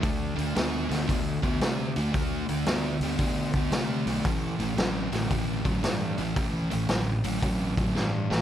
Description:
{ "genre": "blues rock power trio and southern rock", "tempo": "114 BPM", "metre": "4/4", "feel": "swing 66% on 8ths", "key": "A minor", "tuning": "A4 = 441 Hz", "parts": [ { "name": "thick fuzz guitar", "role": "riff", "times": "0.0-8.4 s", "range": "A2 to B3", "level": "-28 LUFS", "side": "equal", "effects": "distortion" }, { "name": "fuzz fingered electric bass", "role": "bass", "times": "0.0-8.4 s", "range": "A1 to C3", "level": "-32 LUFS", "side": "equal", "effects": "overdrive" }, { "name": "raw garage drum kit", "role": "drums", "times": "0.0-8.4 s", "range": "hi-hat, kick drum, snare drum", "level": "-29 LUFS", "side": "equal", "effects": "none" } ], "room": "light reverb, small room ambience", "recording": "none", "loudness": "-25 LUFS", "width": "side -10 dB against mid", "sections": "0.0-8.4 A section", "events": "drum fill 8.0-8.4", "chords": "0.0 D5; 4.3 A5" }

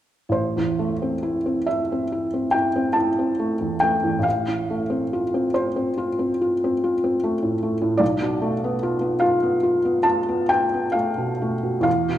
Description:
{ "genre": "classical, romantic nocturne for solo piano", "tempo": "47 BPM (dotted quarters)", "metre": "9/8", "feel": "uneven beats, rubato", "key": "A minor", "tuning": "A4 = 444 Hz", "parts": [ { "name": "felt-muted upright piano", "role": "solo", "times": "0.3-12.2 s", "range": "A1 to A5", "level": "-20 LUFS", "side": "equal", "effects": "none" } ], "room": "wet recital hall reverb, RT60 1.7 s", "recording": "none", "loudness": "-20 LUFS", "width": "side -12 dB against mid", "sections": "0.3-12.2 A section", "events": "none", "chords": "0.3 Am; 4.2 F/A; 8.0 Bm7b5" }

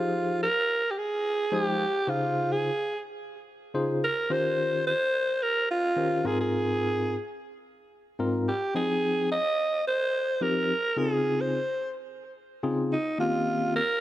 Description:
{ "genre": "funk", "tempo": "108 BPM", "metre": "4/4", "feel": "straight", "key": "F minor", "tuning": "A4 = 440 Hz", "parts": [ { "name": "growling alto saxophone", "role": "melody", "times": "0.0-14.0 s", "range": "Eb4 to Eb5", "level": "-26 LUFS", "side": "right 1 dB", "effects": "none" }, { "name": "bright tine electric piano", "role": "accompaniment", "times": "0.0-13.8 s", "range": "Ab2 to G5", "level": "-28 LUFS", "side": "left 2 dB", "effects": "fast tremolo" } ], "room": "light reverb, small room ambience", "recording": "none", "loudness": "-25 LUFS", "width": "side -14 dB against mid", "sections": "0.0-14.0 A section", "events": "none", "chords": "0.0 Fm7; 2.1 Dbmaj7; 4.3 Eb13; 6.2 Ab69; 8.7 Fm7; 11.0 Dbmaj7; 13.2 Eb13" }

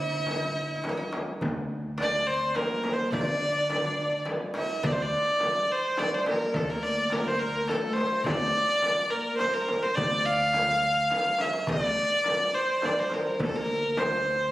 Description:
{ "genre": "Arabic maqam ensemble", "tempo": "105 BPM", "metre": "3/4", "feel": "straight", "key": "D maqam saba", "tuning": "A4 = 440 Hz", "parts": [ { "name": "rich violin", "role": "melody", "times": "0.0-14.5 s", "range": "A4 to F5", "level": "-26 LUFS", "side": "equal", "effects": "none" }, { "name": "oud", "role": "second line", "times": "0.0-14.5 s", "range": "A3 to F4", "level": "-34 LUFS", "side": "right 1 dB", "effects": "none" }, { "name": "upright bass", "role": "bass", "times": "0.0-14.5 s", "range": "D2 to D3", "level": "-35 LUFS", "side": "equal", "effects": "none" }, { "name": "darbuka", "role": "percussion", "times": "0.3-14.1 s", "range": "none", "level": "-40 LUFS", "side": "equal", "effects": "none" }, { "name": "frame drum", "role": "percussion", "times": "0.3-14.1 s", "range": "none", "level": "-33 LUFS", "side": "left 1 dB", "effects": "none" } ], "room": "moderate scoring stage reverb, RT60 1.7 s", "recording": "recorded on a phone in the room, studio reverb", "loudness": "-24 LUFS", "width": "side -15 dB against mid", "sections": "0.0-4.8 A section; 4.8-14.5 B section", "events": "drum fill 11.1-11.7", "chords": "none" }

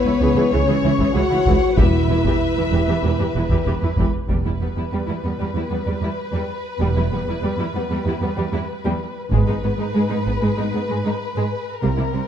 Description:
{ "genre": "cinematic, epic orchestral film score", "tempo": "96 BPM", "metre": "4/4", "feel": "straight", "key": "E dorian", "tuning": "A4 = 440 Hz", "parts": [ { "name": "warm symphonic violin section", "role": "melody", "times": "0.0-12.3 s", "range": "Bb4 to C#5", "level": "-28 LUFS", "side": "left 4 dB", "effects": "none" }, { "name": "warm studio violin section", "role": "second line", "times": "0.0-12.2 s", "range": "G3 to F#5", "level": "-29 LUFS", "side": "left 4 dB", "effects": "none" }, { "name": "dark French horn section", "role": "sustained chords", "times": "0.0-12.1 s", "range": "Bb3 to G4", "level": "-23 LUFS", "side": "left 2 dB", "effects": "none" }, { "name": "rich symphonic cello section", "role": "bass", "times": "0.0-12.2 s", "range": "C#2 to C3", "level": "-24 LUFS", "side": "right 3 dB", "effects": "none" }, { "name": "warm symphonic viola section", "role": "accompaniment", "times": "0.1-12.2 s", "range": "E3 to G#4", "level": "-26 LUFS", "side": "right 1 dB", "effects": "none" }, { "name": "rich symphonic double bass section", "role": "bass", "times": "0.2-12.0 s", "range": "E1 to C#2", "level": "-23 LUFS", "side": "right 3 dB", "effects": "none" }, { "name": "taiko ensemble", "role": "drums", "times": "1.0-5.5, 9.3-10.6 s", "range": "none", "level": "-22 LUFS", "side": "left 1 dB", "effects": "none" }, { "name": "timpani", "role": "percussion", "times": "1.8-2.7 s", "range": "E2", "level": "-24 LUFS", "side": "equal", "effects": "none" }, { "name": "reverse cymbal", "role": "sound effects", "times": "11.8-12.3 s", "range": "none", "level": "barely audible", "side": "none", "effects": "none" } ], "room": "moderate scoring stage reverb, RT60 1.7 s", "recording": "dark, warm production", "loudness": "-18 LUFS", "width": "side -9 dB against mid", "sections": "0.0-4.3 A section; 4.3-12.3 B section", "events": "none", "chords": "0.0 C#m; 1.8 Em; 9.3 G#m" }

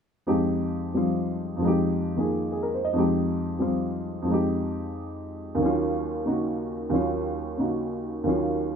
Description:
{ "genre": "jazz", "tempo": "181 BPM", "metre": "4/4", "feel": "swing 62% on 8ths", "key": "unclear", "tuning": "A4 = 440 Hz", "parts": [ { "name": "dark upright piano", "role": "accompaniment", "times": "0.3-8.8 s", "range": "Eb2 to Eb5", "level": "-24 LUFS", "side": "equal", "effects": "none" } ], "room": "moderate club reverb, RT60 0.5 s", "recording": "minimal, uncompressed stereo recording", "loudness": "-24 LUFS", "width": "side -7 dB against mid", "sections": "0.3-8.8 A section", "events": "none", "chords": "0.3 Fm9; 5.6 Ebm9" }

